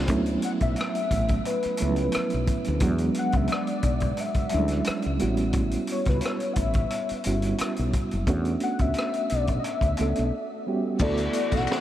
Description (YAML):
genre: R&B, neo-soul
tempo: 88 BPM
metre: 4/4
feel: swing 53% on 16ths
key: D major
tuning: A4 = 439 Hz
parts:
  - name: mellow reed electric piano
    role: accompaniment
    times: 0.0-11.8 s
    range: F3 to A4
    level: -28 LUFS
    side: right 3 dB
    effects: fast tremolo
  - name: woody fretless electric bass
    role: bass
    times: 0.0-11.7 s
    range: F#1 to E2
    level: -27 LUFS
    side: equal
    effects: none
  - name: crunchy breakbeat drum kit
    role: drums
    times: 0.1-11.8 s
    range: crash cymbal, hi-hat, kick drum, rim click, snare drum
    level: -29 LUFS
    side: equal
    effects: none
  - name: warm velvety synth lead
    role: melody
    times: 0.4-11.8 s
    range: B4 to F#5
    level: -30 LUFS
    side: left 3 dB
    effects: chorus, analog delay
  - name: clear studio string section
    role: sustained chords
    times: 11.0-11.8 s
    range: E3 to F#4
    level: -35 LUFS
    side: left 4 dB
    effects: none
  - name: maracas and finger snaps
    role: percussion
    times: 11.0-11.8 s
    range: none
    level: -40 LUFS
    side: left 9 dB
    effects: none
room: moderate huge ambient reverb, RT60 7.7 s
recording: dreamy mix soaked in reverb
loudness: -23 LUFS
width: side -12 dB against mid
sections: 0.0-11.0 A section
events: break 10.3-11.0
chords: 0.1 D69; 2.8 E13; 5.2 A7; 8.3 E9sus4; 10.3 Gmaj7#11; 11.0 D69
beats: | 0.09 0.77 1.45 2.13 | 2.82 3.50 4.18 4.86 | 5.54 6.22 6.91 7.59 | 8.27 8.95 9.63 10.32 | 11.00 11.68